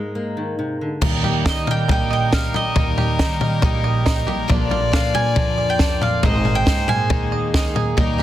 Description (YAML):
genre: indie folk with a building arrangement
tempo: 138 BPM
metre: 4/4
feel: straight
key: Eb major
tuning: A4 = 438 Hz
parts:
  - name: fingerpicked steel-string acoustic guitar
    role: accompaniment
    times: 0.0-2.8 s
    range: Ab2 to Bb4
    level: -26 LUFS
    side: left 1 dB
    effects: none
  - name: warm fiddle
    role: second line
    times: 1.0-8.2 s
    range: Bb4 to D5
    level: -26 LUFS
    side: left 5 dB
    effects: none
  - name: dark upright piano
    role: accompaniment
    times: 1.0-8.2 s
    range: Ab1 to F5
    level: -31 LUFS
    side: right 4 dB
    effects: none
  - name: picked twelve-string acoustic guitar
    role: accompaniment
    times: 1.0-8.2 s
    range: Bb2 to Ab4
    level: -29 LUFS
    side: left 7 dB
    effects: none
  - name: hand-pumped harmonium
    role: sustained chords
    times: 1.0-8.2 s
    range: D3 to Ab4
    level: -34 LUFS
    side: right 1 dB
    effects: none
  - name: bluegrass banjo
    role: arpeggios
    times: 1.0-8.2 s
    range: D4 to Eb5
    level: -29 LUFS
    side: right 9 dB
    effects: analog delay
  - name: upright bass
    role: bass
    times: 1.0-8.2 s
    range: Ab1 to Eb3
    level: -24 LUFS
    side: equal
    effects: none
  - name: compact cocktail drum kit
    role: drums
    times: 1.0-8.2 s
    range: crash cymbal, kick drum, snare drum, toms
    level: -19 LUFS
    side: equal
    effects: none
  - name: mandolin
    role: melody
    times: 1.5-7.7 s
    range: Eb5 to Ab5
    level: -25 LUFS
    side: right 4 dB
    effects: analog delay
room: studio reverb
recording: dense, heavily limited modern master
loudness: -17 LUFS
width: side -12 dB against mid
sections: 0.0-1.0 A section; 1.0-8.2 B section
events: none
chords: 0.0 Absus2; 1.0 Eb; 4.5 Bb; 6.2 Absus2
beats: 0.14 0.58 | 1.02 1.45 1.89 2.33 | 2.76 3.20 3.63 4.07 | 4.50 4.93 5.37 5.80 | 6.24 6.67 7.11 7.54 | 7.98